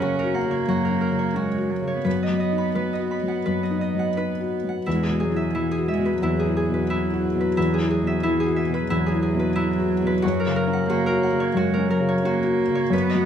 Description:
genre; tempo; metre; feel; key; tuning
neoclassical piano and strings; 89 BPM; 4/4; rubato; E major; A4 = 438 Hz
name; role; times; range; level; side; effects
warm cello; second line; 0.0-13.3 s; E3 to C#4; -27 LUFS; right 4 dB; none
felt-muted upright piano; accompaniment; 0.0-13.3 s; E2 to F#4; -23 LUFS; left 3 dB; none
Celtic harp; arpeggios; 0.0-13.3 s; E4 to B5; -27 LUFS; right 2 dB; none
room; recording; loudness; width
moderate recital hall reverb, RT60 1.6 s; minimal, uncompressed stereo recording; -20 LUFS; side -8 dB against mid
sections
0.0-13.3 A section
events
none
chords
0.0 F#; 2.1 B/F#; 4.9 Eadd9; 10.2 F#

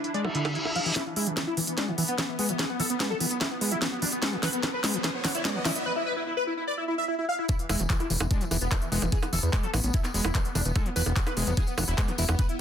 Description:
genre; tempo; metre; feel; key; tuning
psychedelic trance; 147 BPM; 4/4; straight; E major; A4 = 440 Hz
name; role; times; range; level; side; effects
wide unison lead; melody; 0.0-12.6 s; E3 to F5; -31 LUFS; equal; phaser, sidechain pumping, tape echo
evolving wavetable pad; sustained chords; 0.0-12.6 s; B3 to D4; -39 LUFS; left 3 dB; ensemble chorus, built-in reverb, sidechain pumping
drum and bass drum kit; drums; 0.0-12.6 s; bongos, handclaps, hi-hat, snare drum; -30 LUFS; right 1 dB; low-pass filter on hats, low-pass filter on perc, soft clipping on snare, low-pass filter on snare, low-pass filter on room
screaming distorted acid line; riff; 0.1-12.4 s; D3 to E4; -33 LUFS; moving between left 3 dB and right 3 dB; distortion, chorus, auto-pan, sidechain pumping, digital delay
reverse cymbal and riser; sound effects; 0.3-5.9 s; none; -34 LUFS; equal; none
electronic kick drum; drums; 1.0-12.5 s; none; -27 LUFS; equal; high-pass filter on kick, high-pass filter on room
tambourine; percussion; 7.5-12.5 s; none; -38 LUFS; left 3 dB; none
fat analog bass; bass; 7.7-12.4 s; E1 to E2; -27 LUFS; equal; none
room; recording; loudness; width
light reverb, digital ambience; dense, heavily limited modern master; -25 LUFS; side -9 dB against mid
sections
1.0-7.5 A section; 7.5-12.6 B section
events
reverse cymbal 0.3-1.0; build-up 1.0-7.5; drum fill 1.0-5.9; riser 1.0-5.9; filter sweep on acid bass 1.0-7.5; drop 7.5-12.6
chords
0.0 E5

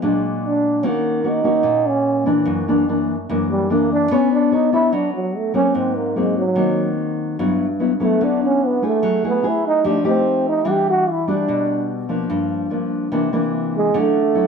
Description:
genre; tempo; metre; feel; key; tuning
bossa nova; 146 BPM; 4/4; straight; unclear; A4 = 439 Hz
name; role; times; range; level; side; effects
nylon-string guitar; accompaniment; 0.0-14.5 s; Gb2 to C#5; -19 LUFS; left 2 dB; none
breathy trombone; melody; 0.5-14.5 s; F#3 to G4; -18 LUFS; right 3 dB; plate reverb
room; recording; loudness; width
moderate studio reverb, RT60 1.0 s; none; -16 LUFS; side -6 dB against mid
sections
0.0-4.1 A section; 4.1-14.5 A section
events
trombone solo 0.0-14.5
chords
0.0 Bb7b13; 0.8 Ebm7; 2.5 Gbaug7; 4.1 Bm9; 5.7 G#9; 7.4 Gmaj13; 9.0 F#m9; 9.8 F9; 10.7 Em9; 12.3 Gm7; 13.1 C9; 13.9 Dmaj9

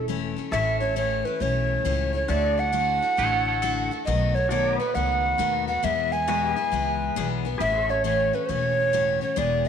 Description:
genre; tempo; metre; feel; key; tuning
honky-tonk and classic country; 136 BPM; 4/4; swing 65% on 8ths; A major; A4 = 435 Hz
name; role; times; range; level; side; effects
breathy mellow tenor recorder; melody; 0.0-9.7 s; B4 to G#5; -24 LUFS; right 2 dB; slapback echo
picked steel-string acoustic guitar; accompaniment; 0.0-9.7 s; E2 to G#4; -30 LUFS; left 11 dB; none
pedal steel guitar; sustained chords; 0.0-9.4 s; F#4 to E5; -34 LUFS; left 1 dB; none
upright bass; bass; 0.0-9.7 s; E1 to E2; -29 LUFS; equal; none
twangy electric guitar; second line; 3.2-4.0 s; A4 to C#5; -31 LUFS; right 9 dB; spring reverb
room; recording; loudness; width
moderate echo chamber reverb, RT60 2.3 s; 1960s-style stereo with parts hard left and right; -22 LUFS; side -8 dB against mid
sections
0.5-9.7 A section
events
none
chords
0.0 A; 2.3 Dadd9; 4.1 B7; 5.8 E; 7.6 A6

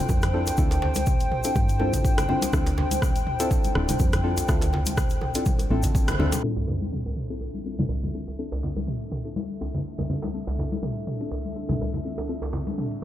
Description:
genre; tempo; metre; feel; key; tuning
afro house; 123 BPM; 4/4; swing 54% on 16ths; D minor; A4 = 440 Hz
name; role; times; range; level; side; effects
dark analog pad; sustained chords; 0.0-13.0 s; D4 to G5; -32 LUFS; equal; chorus, sidechain pumping
deep mellow chord stab; stabs; 0.0-12.5 s; C4 to C5; -32 LUFS; left 2 dB; wide subtle chorus, sidechain pumping, analog delay
woody FM bass; bass; 0.1-6.4 s; D1 to G2; -27 LUFS; equal; sidechain pumping
electronic kick drum; drums; 0.1-6.1 s; none; -24 LUFS; equal; overdrive
djembe; percussion; 0.1-12.6 s; none; -34 LUFS; right 1 dB; none
egg shaker; percussion; 0.1-6.4 s; none; -38 LUFS; left 4 dB; none
deep house drum kit; drums; 0.2-13.0 s; hi-hat, rim click, toms; -32 LUFS; right 1 dB; low-pass filter on hats, low-pass filter on toms, low-pass filter on snare
congas; percussion; 0.2-12.8 s; none; -32 LUFS; left 2 dB; none
sub drop; sound effects; 6.4-8.4 s; none; -33 LUFS; equal; none
room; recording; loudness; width
moderate church reverb, RT60 3.5 s; dreamy mix soaked in reverb, low-pass filter; -23 LUFS; side -12 dB against mid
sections
0.0-6.4 A section; 6.4-13.0 B section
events
drum fill 5.7-6.4; band accent 6.1; impact 6.4-8.4; filter sweep on analog synth pad 6.4-13.0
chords
0.0 Dm7

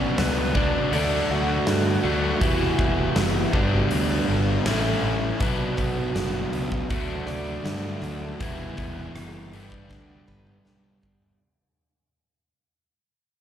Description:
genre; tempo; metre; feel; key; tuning
quiet-loud alternative rock; 80 BPM; 4/4; straight; unclear; A4 = 442 Hz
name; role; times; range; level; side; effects
lead guitar through a small cranked amp; melody; 0.0-4.6 s; B3 to F#5; -30 LUFS; right 2 dB; overdrive, tape echo
overdriven electric guitar; riff; 0.0-11.4 s; G2 to E4; -26 LUFS; equal; spring reverb, slapback echo
fuzz picked electric bass; bass; 0.2-11.3 s; E1 to G2; -28 LUFS; equal; overdrive
huge arena drum kit; drums; 0.2-11.4 s; hi-hat, kick drum, rim click, snare drum, toms; -28 LUFS; equal; none
picked plugged-in steel-string acoustic guitar; arpeggios; 5.4-11.4 s; B2 to D5; -38 LUFS; right 3 dB; slapback echo, tape echo
room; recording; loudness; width
little or no reverb; live gig heard through the venue's PA, club reverb; -21 LUFS; side -9 dB against mid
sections
0.0-5.4 A section; 5.4-11.4 B section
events
fade-out 5.4-11.4; drum fill 9.9-11.4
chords
0.0 Bmadd9; 0.9 D; 2.4 Em; 3.5 G; 4.7 A; 5.4 Bmadd9; 6.9 D; 8.4 Em; 9.5 G

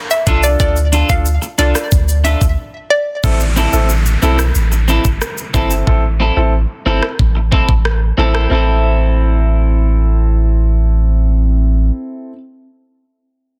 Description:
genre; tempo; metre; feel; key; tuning
dancehall; 91 BPM; 4/4; straight; A minor; A4 = 440 Hz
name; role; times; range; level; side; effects
hollow square pluck; melody; 0.1-3.0 s; D5 to F5; -20 LUFS; equal; chorus, digital delay
island pop drum kit; drums; 0.1-8.5 s; hi-hat, kick drum, rim click, shaker; -19 LUFS; equal; soft clipping on snare
tube shaker; percussion; 0.1-2.6 s; none; -33 LUFS; equal; none
clear grand piano; accompaniment; 0.3-12.3 s; C4 to A4; -25 LUFS; equal; sidechain pumping
electric guitar at the edge of break-up; arpeggios; 0.3-12.4 s; C4 to A4; -23 LUFS; equal; lush chorus
punchy sub bass; bass; 0.3-11.9 s; G1 to D2; -16 LUFS; equal; none
downlifter; sound effects; 3.2-8.5 s; none; -28 LUFS; equal; none
room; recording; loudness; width
little or no reverb; dense, heavily limited modern master; -14 LUFS; mono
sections
0.0-3.2 A section; 3.2-8.5 B section; 8.5-11.1 C section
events
break 2.6-3.2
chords
0.0 Dm; 3.2 Am

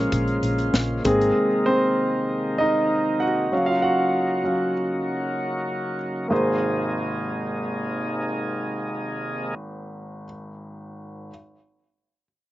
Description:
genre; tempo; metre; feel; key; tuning
piano-driven pop; 97 BPM; 4/4; straight; Ab major; A4 = 440 Hz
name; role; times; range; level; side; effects
clear concert grand piano; accompaniment; 0.0-11.3 s; Ab1 to Gb5; -23 LUFS; equal; slapback echo
tonewheel organ; sustained chords; 0.0-9.5 s; C3 to Ab4; -28 LUFS; equal; overdrive, slow rotary speaker
vintage muted picked electric bass; bass; 0.0-1.3 s; Ab1 to Bb1; -26 LUFS; equal; none
modern studio drum kit; drums; 0.1-1.4 s; hi-hat, kick drum, snare drum; -27 LUFS; left 1 dB; none
room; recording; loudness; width
little or no reverb; recorded outdoors, with no room sound, nothing above 7.7 kHz; -21 LUFS; side -15 dB against mid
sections
0.0-6.3 A section; 6.3-8.8 B section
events
grand piano solo 0.0-6.3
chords
0.0 Bbm7; 1.1 Abadd9; 3.5 Ebm7; 6.3 Abadd9

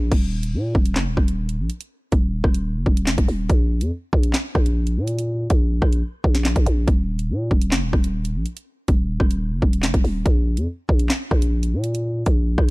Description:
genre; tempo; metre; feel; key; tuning
hip hop, drill; 142 BPM; 4/4; half-time; unclear; A4 = 436 Hz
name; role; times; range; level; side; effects
growling 808-style bass; bass; 0.0-12.7 s; Eb1 to Bb2; -21 LUFS; equal; none
drill drum kit; drums; 0.1-12.7 s; crash cymbal, handclaps, hi-hat, kick drum, rim click, snare drum; -19 LUFS; equal; none
room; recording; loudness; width
little or no reverb; dark, warm production, lossy compression artefacts; -18 LUFS; side -23 dB against mid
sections
0.1-12.7 A section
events
none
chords
none

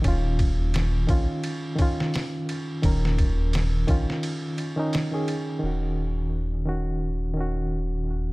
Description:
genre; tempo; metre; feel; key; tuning
trip hop; 86 BPM; 4/4; swing 56% on 16ths; Eb minor; A4 = 440 Hz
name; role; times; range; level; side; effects
reed electric piano; accompaniment; 0.0-8.3 s; Eb3 to Bb4; -28 LUFS; equal; tremolo, vintage 12-bit sampler grit, low-pass filter, tape echo
dark detuned saw bass; bass; 0.0-8.3 s; Eb1 to Bb1; -25 LUFS; equal; none
trip hop sampler-style drum kit; drums; 0.0-5.5 s; hi-hat, kick drum, ride cymbal, snare drum; -27 LUFS; equal; small room ambience
room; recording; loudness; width
light reverb; none; -23 LUFS; side -23 dB against mid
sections
0.0-5.6 A section; 5.6-8.3 B section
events
break 4.2-5.6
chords
0.0 Db/Eb; 5.6 Ebm7

